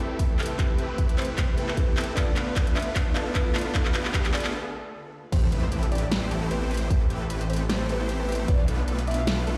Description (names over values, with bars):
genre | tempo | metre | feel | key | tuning
future bass | 152 BPM | 4/4 | swing 55% on 16ths, half-time | A minor | A4 = 439 Hz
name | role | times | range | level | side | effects
felt-muted upright piano | accompaniment | 0.0-5.3 s | C4 to B4 | -40 LUFS | equal | none
ethereal airy pad | sustained chords | 0.4-5.3 s | C3 to B4 | -44 LUFS | equal | none
supersaw chords | riff | 0.0-9.6 s | A3 to C5 | -34 LUFS | equal | sidechain pumping, low-pass filter, delay
big-room dance drum kit | drums | 0.0-9.6 s | crash cymbal, handclaps, hi-hat, snare drum | -34 LUFS | equal | none
riser and impact | sound effects | 2.1-6.9 s | none | -38 LUFS | equal | none
soft octave-layered synth lead | melody | 0.2-9.2 s | B4 to E5 | -38 LUFS | equal | chorus, sidechain pumping, delay
electronic kick drum | drums | 0.2-8.6 s | none | -27 LUFS | equal | none
unison pluck | arpeggios | 5.3-9.5 s | G4 to F5 | -42 LUFS | equal | sidechain pumping, delay
detuned saw bass | bass | 5.3-9.6 s | A1 to B1 | -30 LUFS | equal | chorus, sidechain pumping
room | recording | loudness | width
light reverb, digital ambience | played on a big sound system in a bare room, stone room reverb | -26 LUFS | mono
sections
0.0-5.3 A section; 5.3-9.6 B section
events
build-up 0.0-5.3; drum fill 0.0-4.5; break 4.5-5.3; drop 5.3-9.6; impact 5.3-6.9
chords
0.0 Am9; 2.2 Bm7b5; 5.3 Am9; 8.5 Bm7b5